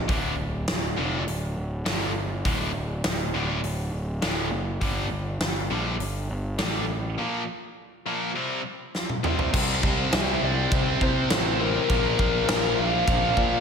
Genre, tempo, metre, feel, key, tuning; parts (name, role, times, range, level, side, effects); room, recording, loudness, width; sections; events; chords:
hard rock; 102 BPM; 4/4; straight; A4 = 440 Hz
fuzz picked electric bass; bass; 0.0-13.6 s; D1 to C3; -29 LUFS; equal; overdrive
tight distorted guitar; riff; 0.1-13.6 s; D2 to C4; -31 LUFS; left 9 dB; distortion, slapback echo
tight distorted guitar; riff; 0.1-13.6 s; D2 to C4; -32 LUFS; right 9 dB; distortion
big rock drum kit; drums; 0.1-13.5 s; crash cymbal, hi-hat, kick drum, snare drum, toms; -27 LUFS; equal
scooped high-gain guitar; riff; 9.5-13.6 s; Bb2 to C5; -32 LUFS; right 1 dB; distortion
brassy analog pad; sustained chords; 9.6-13.6 s; E4 to Bb5; -37 LUFS; right 2 dB
bluesy overdriven lead guitar; melody; 10.1-13.6 s; Bb4 to F5; -27 LUFS; left 3 dB; distortion, slapback echo
moderate scoring stage reverb, RT60 2.0 s; big arena sound; -23 LUFS; side -6 dB against mid
0.0-9.5 A section; 9.5-13.6 B section
drum fill 9.0-9.5
0.1 D5; 4.8 Gm; 7.2 Bb5; 8.4 C5; 9.5 C; 11.9 Bb